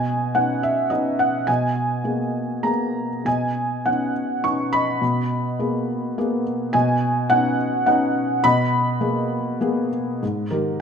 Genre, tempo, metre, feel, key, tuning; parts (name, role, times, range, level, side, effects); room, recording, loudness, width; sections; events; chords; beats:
classical, lyrical solo piano; 103 BPM; 3/4; uneven beats, rubato; A4 = 441 Hz
felt-muted upright piano; solo; 0.0-10.8 s; Ab2 to C#6; -19 LUFS; equal
moderate recital hall reverb, RT60 1.6 s; minimal, uncompressed stereo recording; -19 LUFS; side -6 dB against mid
0.0-10.2 A section
0.0 Badd9; 1.5 G#madd9/B; 3.3 Badd9; 5.0 G#madd9/B; 6.7 Badd9; 8.4 G#madd9/B; 10.2 Ab5
0.36 0.92 | 1.49 2.06 2.65 | 3.26 3.87 4.45 | 5.02 5.60 6.18 | 6.75 7.31 7.88 | 8.45 9.02 9.61 | 10.22